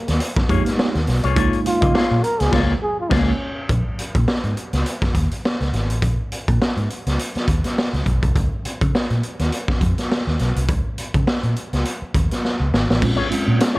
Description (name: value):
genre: funk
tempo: 103 BPM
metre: 4/4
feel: swing 56% on 16ths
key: Bb dorian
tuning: A4 = 440 Hz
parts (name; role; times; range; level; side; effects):
- mellow trombone; melody; 0.0-3.7 s; Bb3 to Bb4; -23 LUFS; equal; none
- electric guitar with an envelope filter; accompaniment; 0.1-3.3, 13.0-13.8 s; Bb3 to Eb5; -25 LUFS; left 6 dB; none
- vintage muted fingered electric bass; bass; 0.1-13.8 s; Ab1 to Db3; -20 LUFS; equal; none
- raw garage drum kit; drums; 0.1-13.8 s; crash cymbal, hi-hat, kick drum, snare drum; -20 LUFS; equal; none
- mellow tine electric piano; stabs; 0.5-3.3, 13.0-13.8 s; Ab3 to G4; -23 LUFS; right 2 dB; medium stereo tremolo
room: studio reverb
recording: none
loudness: -18 LUFS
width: side -21 dB against mid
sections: 0.0-3.7 A section; 3.7-13.0 B section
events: trombone solo 0.0-3.7; band accent 2.5-3.7; drum fill 12.4-13.0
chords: 0.0 Db6; 3.7 Bbm7; 8.4 Db